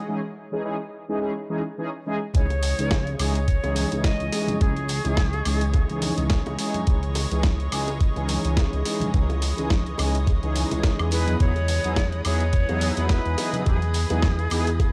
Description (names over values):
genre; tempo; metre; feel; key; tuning
nu-disco, nu disco; 106 BPM; 4/4; swing 56% on 16ths; C# minor; A4 = 440 Hz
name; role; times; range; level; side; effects
jazz flute; melody; 0.0-6.3, 11.1-14.9 s; G#4 to D#5; -33 LUFS; equal; analog delay
lush unison pad; sustained chords; 0.0-14.9 s; E3 to D#5; -36 LUFS; equal; chorus, sidechain pumping
mellow synth brass; accompaniment; 0.1-14.7 s; E3 to G#4; -31 LUFS; equal; chorus, sidechain pumping
chorused synth bass; bass; 2.3-14.9 s; C#2 to E2; -28 LUFS; equal; none
dusty soul sampler-style drum kit; drums; 2.3-14.9 s; hi-hat, snare drum, woodblock; -32 LUFS; equal; none
electronic kick drum; drums; 2.3-14.9 s; none; -24 LUFS; equal; none
congas, tambourine and bongos; percussion; 2.3-14.9 s; none; -36 LUFS; equal; none
room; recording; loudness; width
little or no reverb; dry, gritty hardware recording, cassette tape; -24 LUFS; mono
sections
0.0-2.3 A section; 2.3-14.9 B section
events
build-up 0.0-2.3; break 0.1-2.3; drop 2.3-14.9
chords
0.0 C#madd9; 11.1 Emaj7